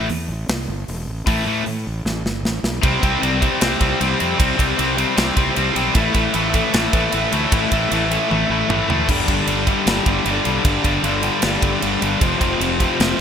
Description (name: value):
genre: hard rock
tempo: 154 BPM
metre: 4/4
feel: straight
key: A minor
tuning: A4 = 440 Hz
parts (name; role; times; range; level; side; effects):
- cranked stack guitar; riff; 0.0-13.2 s; F2 to C4; -21 LUFS; left 10 dB; overdrive, spring reverb
- high-gain distorted guitar; riff; 0.0-13.2 s; F2 to C4; -22 LUFS; right 11 dB; distortion
- fuzz fingered electric bass; bass; 0.0-13.1 s; E1 to A2; -25 LUFS; right 1 dB; overdrive
- tight metal drum kit; drums; 0.1-13.1 s; crash cymbal, hi-hat, kick drum, ride cymbal, snare drum, toms; -22 LUFS; right 1 dB; none
- overdriven tonewheel organ; sustained chords; 2.8-13.2 s; F3 to D5; -30 LUFS; right 1 dB; slow rotary speaker, chorus vibrato
room: light reverb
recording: bright 1980s-style digital production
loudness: -16 LUFS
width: side -8 dB against mid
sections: 0.0-2.8 A section; 2.8-13.2 B section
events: drum fill 2.1-2.8, 8.3-9.1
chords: 0.0 A5; 2.8 C5; 6.0 A5; 9.1 G5; 12.2 F5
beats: 0.10 0.49 0.88 | 1.27 1.67 2.06 2.45 | 2.84 3.23 3.62 4.01 | 4.40 4.79 5.18 5.57 | 5.96 6.35 6.74 7.13 | 7.53 7.92 8.31 8.70 | 9.09 9.48 9.87 10.26 | 10.65 11.04 11.43 11.82 | 12.22 12.61 13.00